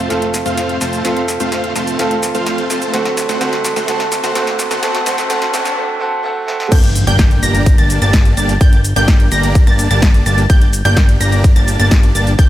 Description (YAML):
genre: EDM, festival progressive house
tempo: 127 BPM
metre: 4/4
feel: straight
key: G minor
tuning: A4 = 440 Hz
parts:
  - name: bright baby grand piano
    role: accompaniment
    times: 0.0-6.7 s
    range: A3 to A4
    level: -19 LUFS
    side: right 2 dB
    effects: sidechain pumping, digital delay
  - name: dense compressed supersaw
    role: riff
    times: 0.0-12.5 s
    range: A3 to Bb5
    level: -19 LUFS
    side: equal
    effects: sidechain pumping, low-pass filter, digital delay
  - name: fat analog bass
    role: bass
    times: 0.0-12.5 s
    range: F1 to D2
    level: -18 LUFS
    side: equal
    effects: sidechain pumping
  - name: riser and impact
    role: sound effects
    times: 1.7-8.6 s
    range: none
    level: -26 LUFS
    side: left 1 dB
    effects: none
  - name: big-room dance drum kit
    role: drums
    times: 0.1-12.5 s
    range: crash cymbal, hi-hat, ride cymbal, shaker, snare drum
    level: -21 LUFS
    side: left 1 dB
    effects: high-pass filter on hats, high-pass filter on snare, high-pass filter on perc, high-pass filter on cymbals
  - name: wide unison pluck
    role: arpeggios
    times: 6.7-12.5 s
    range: G6 to Bb6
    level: -19 LUFS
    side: right 1 dB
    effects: sidechain pumping, digital delay
  - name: electronic kick drum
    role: drums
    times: 6.7-12.5 s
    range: none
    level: -10 LUFS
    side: equal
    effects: none
room: light reverb, digital ambience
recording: high-pass filter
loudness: -11 LUFS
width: side -13 dB against mid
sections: 0.0-6.7 A section; 6.7-12.5 B section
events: build-up 0.0-6.7; drum fill 0.0-5.8, 6.5; riser 1.7-5.8; break 5.8-6.7; drop 6.7-12.5; impact 6.7-8.6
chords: 0.0 F; 2.9 D; 6.7 Gm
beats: 0.10 0.58 | 1.05 1.52 1.99 2.47 | 2.94 3.41 3.88 4.36 | 4.83 5.30 5.77 6.25 | 6.72 7.19 7.66 8.13 | 8.61 9.08 9.55 10.03 | 10.50 10.97 11.44 11.91 | 12.39